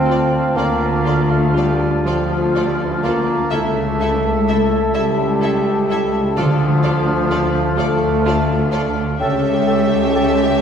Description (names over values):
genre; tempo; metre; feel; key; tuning
classical, slow romantic movement for symphony orchestra; 42 BPM (dotted quarters); 6/8; uneven beats, rubato; D minor; A4 = 440 Hz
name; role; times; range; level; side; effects
mellow hollow concert flute; second line; 0.0-10.3 s; G5 to A5; -27 LUFS; left 1 dB; none
warm clarinet; second line; 0.0-10.3 s; F4 to A4; -25 LUFS; left 1 dB; none
warm oboe; second line; 0.0-10.3 s; E5 to F5; -27 LUFS; equal; none
mellow bassoon; accompaniment; 0.0-10.6 s; E3 to C#4; -22 LUFS; right 1 dB; none
mellow French horn section; sustained chords; 0.0-10.6 s; F3 to C#4; -23 LUFS; left 3 dB; none
concert harp; arpeggios; 0.0-10.6 s; C#3 to D5; -26 LUFS; left 1 dB; none
rich symphonic cello section; bass; 0.0-10.6 s; C#2 to D2; -23 LUFS; right 1 dB; none
warm symphonic double bass section; bass; 0.0-10.6 s; C#2 to D2; -23 LUFS; right 1 dB; none
rich studio violin section; melody; 0.1-10.6 s; D5 to E5; -29 LUFS; left 3 dB; none
warm symphonic violin section; second line; 0.1-10.6 s; A4; -30 LUFS; left 4 dB; none
rich symphonic viola section; accompaniment; 0.1-10.6 s; E4 to G4; -29 LUFS; equal; none
timpani; percussion; 6.4-7.7 s; D3; -23 LUFS; right 1 dB; none
room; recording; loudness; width
wet concert hall reverb, RT60 2.1 s; recorded in a church or concert hall; -15 LUFS; side -7 dB against mid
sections
0.0-10.6 A section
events
none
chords
0.0 Dm; 3.5 A/C#; 6.4 Dm; 9.2 A7/C#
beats
| 0.56 2.06 | 3.53 4.95 | 6.38 7.78 | 9.20